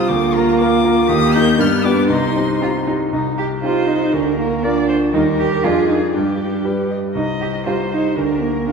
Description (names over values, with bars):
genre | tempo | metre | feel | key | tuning
quick classical-period movement for piano quartet | 119 BPM | 2/4 | straight | C minor | A4 = 441 Hz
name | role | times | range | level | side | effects
rich violin | melody | 0.0-8.7 s | Bb3 to G6 | -26 LUFS | left 6 dB | none
rich cello | second line | 0.0-8.7 s | Bb3 to G4 | -19 LUFS | right 4 dB | none
bright grand piano | accompaniment | 0.0-8.7 s | C2 to D5 | -19 LUFS | left 1 dB | none
clear viola | accompaniment | 0.0-8.7 s | Bb3 to Eb5 | -22 LUFS | equal | none
room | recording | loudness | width
wet scoring stage reverb, RT60 2.1 s | heard from further back in the room | -14 LUFS | side -5 dB against mid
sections
0.0-3.1 A section; 3.1-8.7 A section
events
none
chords
0.1 Bb/D; 1.1 Eb; 1.6 G7; 2.1 Cm; 4.1 Bb/D; 5.1 Eb; 5.6 Ddim/F; 6.1 G; 7.2 Cm; 8.2 Bb/D